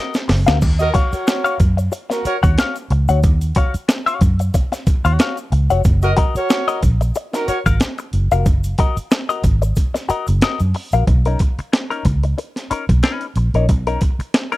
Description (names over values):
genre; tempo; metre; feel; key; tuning
funk; 92 BPM; 4/4; swing 56% on 16ths; unclear; A4 = 443 Hz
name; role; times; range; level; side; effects
semi-hollow electric guitar; accompaniment; 0.0-14.6 s; C#4 to Gb5; -20 LUFS; left 5 dB; wah
breakbeat sampler-style drum kit; drums; 0.1-14.6 s; crash cymbal, hi-hat, kick drum, snare drum; -17 LUFS; equal; none
tube shaker; percussion; 0.1-11.1 s; none; -40 LUFS; left 4 dB; none
vintage muted fingered electric bass; bass; 0.3-14.2 s; F1 to Gb2; -16 LUFS; equal; none
mellow horn section; second line; 0.8-7.6 s; Bb3 to Eb5; -20 LUFS; right 1 dB; none
room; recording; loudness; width
little or no reverb; dry, close 1970s-style studio recording; -15 LUFS; side -17 dB against mid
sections
0.0-11.1 A section; 11.1-14.6 B section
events
drum fill 0.0-0.6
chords
0.0 Gb6; 0.6 Ebm9; 5.8 Gb6; 11.1 Bmaj9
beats
| 0.62 1.27 1.93 2.58 | 3.23 3.89 4.54 5.19 | 5.85 6.50 7.15 7.81 | 8.46 9.11 9.77 10.42 | 11.07 11.73 12.38 13.03 | 13.69 14.34